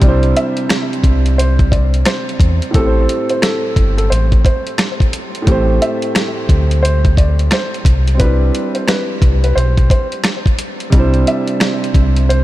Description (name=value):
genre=hip hop, boom-bap hip-hop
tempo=88 BPM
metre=4/4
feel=swing 63% on 16ths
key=unclear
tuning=A4 = 440 Hz
part: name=dark grand piano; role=accompaniment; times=0.0-12.4 s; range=A2 to C5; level=-19 LUFS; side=right 2 dB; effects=high-pass filter, low-pass filter
part: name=deep dub fingered electric bass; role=bass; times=0.0-12.4 s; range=G1 to E2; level=-13 LUFS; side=equal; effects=none
part: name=dusty soul sampler-style drum kit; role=drums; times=0.0-12.4 s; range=hi-hat, kick drum, rim click, snare drum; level=-16 LUFS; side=equal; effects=none
part: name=dark upright piano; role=melody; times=0.4-12.4 s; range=A4 to E5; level=-22 LUFS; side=equal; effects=high-pass filter, low-pass filter, ping-pong delay
room=light reverb, studio ambience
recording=none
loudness=-12 LUFS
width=side -16 dB against mid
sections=0.0-12.4 A section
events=none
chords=0.0 C; 2.7 Am7; 7.9 Cmaj7